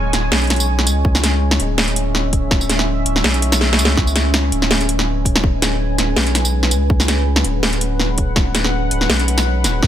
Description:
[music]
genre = half-time drum and bass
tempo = 164 BPM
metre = 4/4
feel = swing 54% on 16ths, half-time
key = C# phrygian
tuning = A4 = 440 Hz
[part]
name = deep dark ambient pad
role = sustained chords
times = 0.0-9.9 s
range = G#3 to G#5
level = -22 LUFS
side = right 1 dB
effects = chorus, built-in reverb, sidechain pumping
[part]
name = saturated sub bass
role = bass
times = 0.0-9.9 s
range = D1 to C#2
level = -18 LUFS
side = equal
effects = none
[part]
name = drum and bass drum kit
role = drums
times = 0.1-9.9 s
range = hi-hat, snare drum, tambourine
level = -18 LUFS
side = equal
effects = none
[part]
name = electronic kick drum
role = drums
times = 1.0-9.9 s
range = none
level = -17 LUFS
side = equal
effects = none
[sound]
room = little or no reverb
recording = none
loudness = -14 LUFS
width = side -10 dB against mid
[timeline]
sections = 0.0-9.9 A section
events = drum fill 3.6-4.0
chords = 0.0 C#5

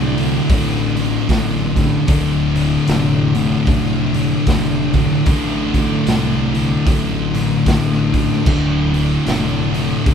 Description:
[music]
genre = stoner and doom metal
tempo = 75 BPM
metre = 4/4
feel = swing 59% on 8ths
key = unclear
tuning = A4 = 440 Hz
[part]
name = string machine, full ensemble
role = sustained chords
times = 0.0-10.1 s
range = D3 to E4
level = -33 LUFS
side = right 2 dB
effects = none
[part]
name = sludgy distorted guitar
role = riff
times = 0.0-10.1 s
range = D2 to D3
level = -20 LUFS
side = left 1 dB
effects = overdrive
[part]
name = thick fuzz guitar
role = riff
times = 0.0-10.1 s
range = D2 to D3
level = -20 LUFS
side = left 7 dB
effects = distortion
[part]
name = thick fuzz guitar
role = riff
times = 0.0-10.1 s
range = D2 to D3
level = -22 LUFS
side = right 6 dB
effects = distortion
[part]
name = fuzz fingered electric bass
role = bass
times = 0.0-10.1 s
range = D1 to C2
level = -24 LUFS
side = equal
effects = overdrive
[part]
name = raw garage drum kit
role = drums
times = 0.2-10.1 s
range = crash cymbal, hi-hat, kick drum, snare drum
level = -19 LUFS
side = equal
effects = none
[sound]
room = moderate studio ambience, RT60 0.5 s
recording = band playing live in one room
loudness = -14 LUFS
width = side -7 dB against mid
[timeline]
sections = 0.0-10.1 A section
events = none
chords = 0.0 Dm

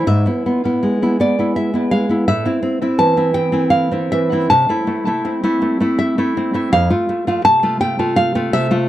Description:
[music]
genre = romantic piece for solo classical guitar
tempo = 82 BPM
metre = 3/4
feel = rubato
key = A minor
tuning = A4 = 439 Hz
[part]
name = nylon-string guitar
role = solo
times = 0.0-8.9 s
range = F2 to A5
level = -14 LUFS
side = equal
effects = tape echo
[sound]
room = light reverb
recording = dry, close 1970s-style studio recording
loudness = -14 LUFS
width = side -13 dB against mid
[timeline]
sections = 0.0-8.9 A section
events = none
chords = 0.1 E/G#; 2.3 Am; 4.5 Am/C; 6.7 F

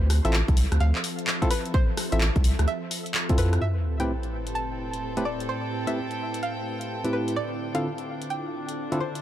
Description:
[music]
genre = UK garage, two-step garage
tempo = 128 BPM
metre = 4/4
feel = swing 64% on 16ths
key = A minor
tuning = A4 = 440 Hz
[part]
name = string-like resonator pluck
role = melody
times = 0.0-9.2 s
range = B4 to A5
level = -34 LUFS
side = equal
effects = chorus, dub echo
[part]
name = soft string machine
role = sustained chords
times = 0.1-9.2 s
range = A2 to E5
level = -35 LUFS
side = equal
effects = ensemble chorus, sidechain pumping
[part]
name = saturated sub bass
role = bass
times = 0.0-3.6 s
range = A1 to F2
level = -22 LUFS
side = equal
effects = tube saturation
[part]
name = house drum kit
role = drums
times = 0.1-9.2 s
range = handclaps, hi-hat, rim click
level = -30 LUFS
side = equal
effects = analog delay
[part]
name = barky tine electric piano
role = stabs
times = 0.2-9.0 s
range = A2 to B4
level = -31 LUFS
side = equal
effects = overdrive, low-pass filter, dub echo
[part]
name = electronic kick drum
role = drums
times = 0.5-3.4 s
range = none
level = -23 LUFS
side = equal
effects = none
[part]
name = sub drop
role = sound effects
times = 3.6-5.5 s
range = none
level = -30 LUFS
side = equal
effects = none
[part]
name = warm studio string section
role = texture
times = 3.6-9.2 s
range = C4 to G5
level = -35 LUFS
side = equal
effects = sidechain pumping
[sound]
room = light reverb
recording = echo-heavy mix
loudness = -24 LUFS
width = side -12 dB against mid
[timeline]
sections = 0.0-3.6 A section; 3.6-9.2 B section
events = impact 3.6-5.5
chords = 0.0 Dm9; 3.6 Am7; 7.4 Dm9

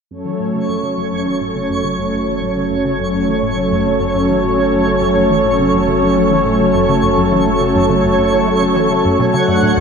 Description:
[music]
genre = ambient, sequencer-driven space music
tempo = 104 BPM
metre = 4/4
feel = straight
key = F# minor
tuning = A4 = 438 Hz
[part]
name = lush unison pad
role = sustained chords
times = 0.1-9.8 s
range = F#3 to F#5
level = -14 LUFS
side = equal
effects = chorus, shimmer reverb
[part]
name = resonant blip pluck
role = riff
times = 0.1-9.8 s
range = D2 to A3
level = -23 LUFS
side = left 1 dB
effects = chorus, phaser, tape echo
[part]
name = warm sub bass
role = bass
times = 0.1-9.8 s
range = F#1 to D2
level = -29 LUFS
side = equal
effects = none
[part]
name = twinkling granular texture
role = texture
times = 0.6-9.8 s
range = C#5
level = -22 LUFS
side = right 3 dB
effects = built-in reverb, shimmer reverb
[sound]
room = wet plate reverb, RT60 3.0 s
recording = none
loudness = -13 LUFS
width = side -6 dB against mid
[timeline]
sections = 0.1-9.8 A section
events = fade-in on synth arpeggio sound 0.1-9.8; fade-in on sub bass 0.1-9.8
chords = 0.1 F#m

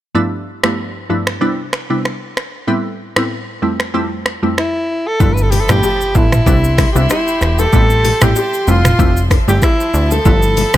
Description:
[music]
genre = afrobeats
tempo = 95 BPM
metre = 4/4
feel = swing 55% on 16ths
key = unclear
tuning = A4 = 441 Hz
[part]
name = glassy wavetable pluck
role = accompaniment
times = 0.1-10.8 s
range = F2 to E4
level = -18 LUFS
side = equal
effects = chorus
[part]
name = afro-pop drum kit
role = drums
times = 0.6-10.8 s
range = finger snaps, hi-hat, kick drum, rim click, shaker, toms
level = -16 LUFS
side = equal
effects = none
[part]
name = breathy alto saxophone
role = melody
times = 4.6-10.8 s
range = E4 to B4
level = -16 LUFS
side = equal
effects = none
[part]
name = warm studio string section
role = sustained chords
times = 5.2-10.8 s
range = F3 to C6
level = -24 LUFS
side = left 1 dB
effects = sidechain pumping
[part]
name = plucky analog bass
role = bass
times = 5.2-10.8 s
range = E1 to D2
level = -14 LUFS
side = equal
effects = none
[part]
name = congas and bongos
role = percussion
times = 5.2-10.7 s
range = none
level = -23 LUFS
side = left 9 dB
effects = none
[part]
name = impact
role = sound effects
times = 5.3-7.7 s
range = none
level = -24 LUFS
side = equal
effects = none
[sound]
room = little or no reverb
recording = none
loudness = -12 LUFS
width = side -13 dB against mid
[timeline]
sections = 0.1-5.2 A section; 5.2-10.8 B section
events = impact 5.2-7.7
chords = 0.1 G13; 1.4 Cmaj7; 2.7 Am7; 3.6 Fmaj7; 5.2 G13; 6.5 Cmaj7; 7.7 Am7; 8.7 Fmaj7; 10.3 G13

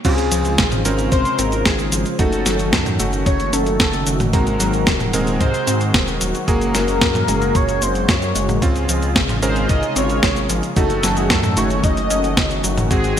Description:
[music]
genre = synthwave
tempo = 112 BPM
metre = 4/4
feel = straight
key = Db major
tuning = A4 = 441 Hz
[part]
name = wide unison lead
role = melody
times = 0.0-13.2 s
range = Ab4 to Eb5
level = -22 LUFS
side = left 1 dB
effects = lush chorus, cassette tape, ping-pong delay
[part]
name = wide unison pluck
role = arpeggios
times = 0.0-13.2 s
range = Bb2 to Db4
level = -27 LUFS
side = left 2 dB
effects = ping-pong delay
[part]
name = clear electric grand piano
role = stabs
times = 0.0-13.2 s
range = Ab3 to Bb4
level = -25 LUFS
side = right 2 dB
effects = none
[part]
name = dark detuned saw bass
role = bass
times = 0.0-13.2 s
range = Eb1 to Ab2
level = -23 LUFS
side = equal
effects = tube saturation
[part]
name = clean 12-bit digital drum machine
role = drums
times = 0.0-13.2 s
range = cabasa, crash cymbal, hi-hat, snare drum, toms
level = -20 LUFS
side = equal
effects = small room ambience, gated reverb
[part]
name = electronic kick drum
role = drums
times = 0.0-13.0 s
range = none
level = -20 LUFS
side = equal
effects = small room ambience
[part]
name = brassy analog pad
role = sustained chords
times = 0.1-13.2 s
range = Db3 to C5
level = -26 LUFS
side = left 1 dB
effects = chorus, sidechain pumping
[sound]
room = moderate lush hall reverb, RT60 1.9 s, digital ambience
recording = bright 1980s-style digital production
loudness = -15 LUFS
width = side -9 dB against mid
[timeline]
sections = 0.0-13.2 A section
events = none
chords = 0.0 Dbmaj7; 2.2 Gbm6; 4.3 Ab7; 6.5 Gbadd9; 8.6 Dbmaj7; 10.8 Gbm6

